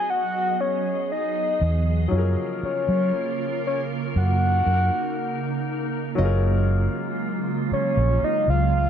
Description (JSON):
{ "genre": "contemporary R&B", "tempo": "59 BPM", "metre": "4/4", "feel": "straight", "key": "F# major", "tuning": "A4 = 439 Hz", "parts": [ { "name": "soft octave-layered synth lead", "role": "melody", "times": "0.0-8.9 s", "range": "C#5 to G#5", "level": "-24 LUFS", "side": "left 2 dB", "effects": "chorus" }, { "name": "dark concert grand piano", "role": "accompaniment", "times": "0.0-8.9 s", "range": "E#3 to A#4", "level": "-29 LUFS", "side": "left 4 dB", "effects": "none" }, { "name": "glassy FM pad", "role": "sustained chords", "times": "0.0-8.9 s", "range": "C#3 to D#5", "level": "-28 LUFS", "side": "right 3 dB", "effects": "ensemble chorus, built-in reverb" }, { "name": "vintage muted fingered electric bass", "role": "bass", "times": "1.6-8.9 s", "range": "F#1 to F#3", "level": "-20 LUFS", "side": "right 1 dB", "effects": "none" }, { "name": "nylon-string guitar", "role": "texture", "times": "6.2-7.2 s", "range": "D#5", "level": "-38 LUFS", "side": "right 7 dB", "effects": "tape echo" } ], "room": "light reverb", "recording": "none", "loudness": "-21 LUFS", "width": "side -8 dB against mid", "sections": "0.0-6.2 A section; 6.2-8.9 B section", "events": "break 5.2-6.2", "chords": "0.0 Emaj9; 2.1 F#maj7; 6.2 F#maj9" }